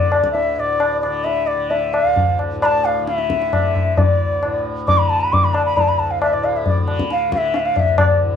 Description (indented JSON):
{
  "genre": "indian classical, Hindustani",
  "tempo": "134 BPM",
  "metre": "4/4",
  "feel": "straight",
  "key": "D raga shivaranjani",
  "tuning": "A4 = 439 Hz",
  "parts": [
    { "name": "bansuri", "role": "melody", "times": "0.0-8.2 s", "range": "D5 to D6", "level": "-19 LUFS", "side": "equal", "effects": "cassette tape" },
    { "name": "tanpura", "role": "drone", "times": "0.0-8.4 s", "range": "D2 to D3", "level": "-27 LUFS", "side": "equal", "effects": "none" },
    { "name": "tabla", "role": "percussion", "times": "0.1-8.1 s", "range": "none", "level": "-18 LUFS", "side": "left 3 dB", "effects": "none" }
  ],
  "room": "moderate small room ambience, RT60 0.5 s",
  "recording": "home recording on cassette",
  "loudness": "-15 LUFS",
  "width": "side -8 dB against mid",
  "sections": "0.0-8.4 A section",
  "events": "speeding up 0.0-8.4",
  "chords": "none"
}